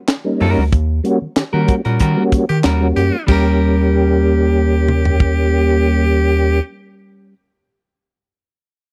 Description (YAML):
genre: funk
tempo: 94 BPM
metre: 4/4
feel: straight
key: Eb mixolydian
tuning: A4 = 440 Hz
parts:
  - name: tight funk drum kit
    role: drums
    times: 0.1-5.4 s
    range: crash cymbal, handclaps, hi-hat, kick drum, snare drum, toms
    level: -18 LUFS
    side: equal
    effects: none
  - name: mellow tonewheel organ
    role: stabs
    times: 0.2-6.6 s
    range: G3 to G4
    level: -20 LUFS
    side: equal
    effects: chorus vibrato, slow rotary speaker
  - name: clean electric guitar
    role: accompaniment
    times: 0.4-7.4 s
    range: G3 to Bb4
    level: -24 LUFS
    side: equal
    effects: none
  - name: round analog bass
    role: bass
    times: 0.4-6.6 s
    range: D2 to Eb3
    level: -18 LUFS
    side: equal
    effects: none
  - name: raspy tenor saxophone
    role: second line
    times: 2.5-6.6 s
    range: G4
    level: -24 LUFS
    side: equal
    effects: none
room: small room ambience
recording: dry, close 1970s-style studio recording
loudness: -15 LUFS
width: mono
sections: 0.0-3.3 A section; 3.3-5.8 B section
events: band accent 0.7-3.3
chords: 0.0 Eb7#9; 3.3 Eb7